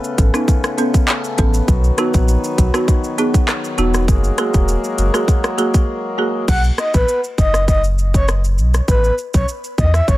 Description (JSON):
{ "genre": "dancehall", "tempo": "100 BPM", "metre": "4/4", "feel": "straight", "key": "B major", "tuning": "A4 = 440 Hz", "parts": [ { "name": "pedal harmonium", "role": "sustained chords", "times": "0.0-6.5 s", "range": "C#3 to B3", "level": "-23 LUFS", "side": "left 2 dB", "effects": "sidechain pumping" }, { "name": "island pop drum kit", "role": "drums", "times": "0.0-10.2 s", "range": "crash cymbal, handclaps, hi-hat, kick drum, rim click, shaker", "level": "-16 LUFS", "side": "equal", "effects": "overdrive" }, { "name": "folk marimba with medium mallets", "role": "accompaniment", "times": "0.2-6.3 s", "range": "A#3 to A4", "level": "-21 LUFS", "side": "right 2 dB", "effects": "sidechain pumping" }, { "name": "warm sub bass", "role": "bass", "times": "0.2-10.2 s", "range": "E1 to E2", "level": "-16 LUFS", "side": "equal", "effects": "none" }, { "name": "breathy flute-like synth lead", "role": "melody", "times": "6.5-10.2 s", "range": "B4 to F#5", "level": "-19 LUFS", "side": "equal", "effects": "chorus, tape echo" } ], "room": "little or no reverb", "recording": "none", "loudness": "-14 LUFS", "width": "side -16 dB against mid", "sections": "0.0-6.5 A section; 6.5-10.2 B section", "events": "break 5.9-6.5", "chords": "0.0 Aadd9; 1.7 B; 4.1 F#add9; 6.5 B5; 8.9 Asus2", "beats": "0.48 1.08 | 1.68 2.28 2.88 3.48 | 4.08 4.68 5.28 5.88 | 6.48 7.08 7.68 8.28 | 8.88 9.48 10.08" }